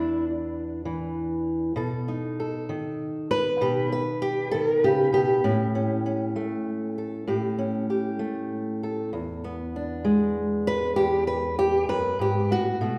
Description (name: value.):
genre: acoustic country blues, solo or duo.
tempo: 65 BPM (dotted quarters).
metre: 12/8.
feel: straight.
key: unclear.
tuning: A4 = 440 Hz.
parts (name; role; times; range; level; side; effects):
fingerpicked old ladder-braced acoustic guitar; solo; 0.0-13.0 s; E2 to B4; -26 LUFS; equal; none.
room: wet recital hall reverb, RT60 1.6 s.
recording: recorded in a church or concert hall.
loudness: -26 LUFS.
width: mono.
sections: 0.0-13.0 A section.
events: none.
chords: 0.0 E7(no3); 1.8 B7; 5.4 A7; 9.1 E7.